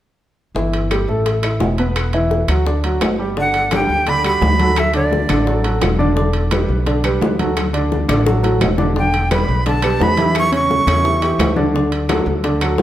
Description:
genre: latin, salsa.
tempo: 172 BPM.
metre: 4/4.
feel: straight.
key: unclear.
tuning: A4 = 440 Hz.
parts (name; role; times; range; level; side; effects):
upright bass; bass; 0.5-12.8 s; E1 to E2; -20 LUFS; equal; none.
clear concert grand piano; accompaniment; 0.6-12.8 s; C#3 to E5; -19 LUFS; right 1 dB; none.
bongos; percussion; 0.6-12.8 s; none; -26 LUFS; left 5 dB; none.
timbales; percussion; 0.7-12.8 s; none; -25 LUFS; right 2 dB; none.
claves; percussion; 0.9-12.8 s; none; -31 LUFS; left 3 dB; none.
breathy bright jazz flute; melody; 3.4-5.6, 9.0-11.5 s; D5 to C#6; -18 LUFS; right 1 dB; none.
congas; percussion; 3.4-12.8 s; none; -23 LUFS; left 2 dB; none.
room: wet large studio reverb, RT60 1.4 s.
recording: none.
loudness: -14 LUFS.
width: side -12 dB against mid.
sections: 0.6-3.4 A section; 3.4-12.8 B section.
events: drum fill 8.1-9.0.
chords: 0.6 Emadd11/G; 1.3 A5; 2.0 E5; 2.7 D; 3.4 Gmaj7; 4.8 D; 6.2 Em7; 7.6 Dadd9; 9.0 Em7; 10.4 C#dim; 11.7 D.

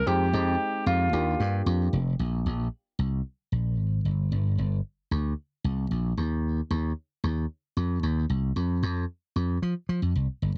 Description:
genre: early-eighties boogie funk.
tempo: 113 BPM.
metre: 4/4.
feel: straight.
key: unclear.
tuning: A4 = 444 Hz.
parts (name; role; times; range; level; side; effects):
breathy alto saxophone; melody; 0.0-1.6 s; F4 to G4; -31 LUFS; equal; slapback echo.
barky tine electric piano; accompaniment; 0.1-2.0 s; Ab3 to G4; -33 LUFS; equal; overdrive.
slap bass; bass; 0.1-10.5 s; F1 to F3; -28 LUFS; equal; none.
room: small room ambience.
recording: none.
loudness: -28 LUFS.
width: mono.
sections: 0.0-2.2 A section; 2.2-10.6 B section.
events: none.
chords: 0.1 Fm7; 1.1 Ebmaj9; 2.2 Bbsus2; 4.1 Gm; 6.2 N.C.; 8.6 F5.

